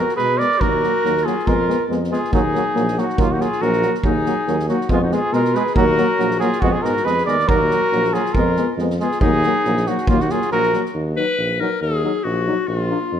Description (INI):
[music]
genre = balkan folk, Balkan brass band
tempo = 139 BPM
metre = 2/4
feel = swing 55% on 16ths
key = Eb minor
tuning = A4 = 440 Hz
[part]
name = dark trumpet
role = melody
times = 0.0-10.8 s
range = F4 to D5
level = -20 LUFS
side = right 2 dB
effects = none
[part]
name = bright clarinet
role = second line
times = 0.0-13.2 s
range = Bb3 to Cb5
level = -24 LUFS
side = left 5 dB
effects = none
[part]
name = bright trombone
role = accompaniment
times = 0.0-13.0 s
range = Gb3 to Bb3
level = -27 LUFS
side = right 6 dB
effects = none
[part]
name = dark euphonium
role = accompaniment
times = 0.0-13.0 s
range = Bb3 to Eb4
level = -25 LUFS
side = left 4 dB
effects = none
[part]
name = soft-mallet drum kit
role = percussion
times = 0.1-10.9 s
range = kick drum, snare drum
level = -24 LUFS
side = right 1 dB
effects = none
[part]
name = warm tuba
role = bass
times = 0.2-13.2 s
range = Bb1 to Cb3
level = -23 LUFS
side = equal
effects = none
[sound]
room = moderate scoring stage reverb, RT60 1.4 s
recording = minimal, uncompressed stereo recording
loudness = -16 LUFS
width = side -9 dB against mid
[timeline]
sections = 0.0-4.0 A section; 4.0-10.9 A section; 10.9-13.2 B section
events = clarinet solo 10.9-13.2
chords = 0.0 Fdim (rootless); 0.6 Ebm; 1.5 Fdim; 2.3 Ebm; 4.9 Fdim; 5.8 Ebm; 6.6 Fdim; 7.5 Ebm; 8.3 Fdim; 9.2 Ebm; 12.7 Bb